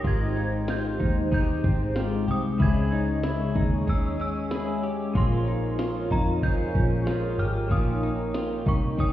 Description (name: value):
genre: dream pop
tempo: 94 BPM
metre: 4/4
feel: straight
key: Ab major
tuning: A4 = 440 Hz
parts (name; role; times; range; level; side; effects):
- synth chime; melody; 0.0-9.1 s; Bb5 to Ab6; -36 LUFS; right 1 dB; ensemble chorus, ping-pong delay
- clean electric guitar; accompaniment; 0.0-9.1 s; Bb2 to Ab4; -33 LUFS; right 3 dB; tremolo, lush chorus
- warm analog pad; sustained chords; 0.0-9.1 s; Ab3 to G5; -30 LUFS; left 1 dB; chorus
- direct-recorded clean electric guitar; arpeggios; 0.0-9.1 s; C4 to G4; -34 LUFS; left 3 dB; wide subtle chorus, ping-pong delay
- vintage muted picked electric bass; bass; 0.0-9.1 s; Ab1 to F2; -27 LUFS; left 1 dB; none
- glitchy drum kit; drums; 0.0-9.1 s; kick drum, ride cymbal, snare drum, tambourine; -27 LUFS; equal; none
room: light reverb, digital ambience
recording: heard muffled through a wall, stone room reverb, EQ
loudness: -23 LUFS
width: side -13 dB against mid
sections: 0.0-9.1 A section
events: none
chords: 0.0 Abmaj7; 2.6 Dbm; 5.2 Bbm7; 7.7 Eb7/Bb